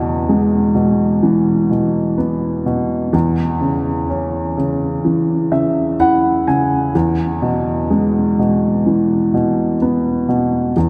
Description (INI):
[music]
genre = pop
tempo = 63 BPM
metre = 4/4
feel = straight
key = E major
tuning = A4 = 440 Hz
[part]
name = warm upright piano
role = solo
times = 0.0-10.9 s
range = E2 to G#5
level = -16 LUFS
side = equal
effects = none
[sound]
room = wet cathedral reverb, RT60 5.3 s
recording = recorded in a church or concert hall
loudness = -16 LUFS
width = mono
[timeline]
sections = 0.0-10.9 A section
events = upright piano fill 5.0-6.9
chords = 0.0 E; 3.1 E69; 6.9 E